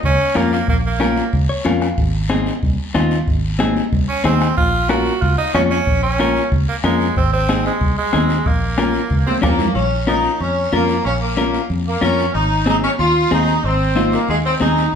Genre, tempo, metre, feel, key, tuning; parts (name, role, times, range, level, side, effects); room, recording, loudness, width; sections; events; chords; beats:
latin, cumbia; 185 BPM; 4/4; straight; Bb minor; A4 = 440 Hz
fingered electric bass; bass; 0.0-14.9 s; Ab1 to F2; -20 LUFS; equal
bombo; percussion; 0.0-9.6 s; -22 LUFS; equal
congas; percussion; 0.0-14.8 s; -25 LUFS; right 2 dB
guiro; percussion; 0.0-14.9 s; -33 LUFS; left 4 dB
raspy tenor saxophone; second line; 0.1-1.3, 4.1-9.4 s; Ab3 to Gb4; -20 LUFS; right 3 dB
semi-hollow electric guitar; accompaniment; 0.4-14.8 s; C4 to F5; -20 LUFS; left 4 dB
clear saxophone section; melody; 9.3-14.9 s; Ab3 to F4; -18 LUFS; equal; plate reverb
wet large studio reverb, RT60 0.9 s; heard from further back in the room; -15 LUFS; side -7 dB against mid
0.0-9.8 A section; 9.8-15.0 B section
tenor saxophone solo 0.0-9.8; clean electric guitar fill 1.3-2.0; drum fill 9.3-9.8
0.0 Bbm; 2.0 Ab; 4.6 Bbm; 7.2 Ab; 8.5 Bbm; 12.3 Ab
0.03 0.35 | 0.68 1.00 1.33 1.65 | 1.98 2.30 2.62 2.95 | 3.27 3.60 3.92 4.25 | 4.57 4.89 5.22 5.54 | 5.87 6.19 6.51 6.84 | 7.16 7.49 7.81 8.13 | 8.46 8.78 9.11 9.43 | 9.76 10.08 10.40 10.73 | 11.05 11.38 11.70 12.02 | 12.35 12.67 12.99 13.32 | 13.64 13.97 14.29 14.61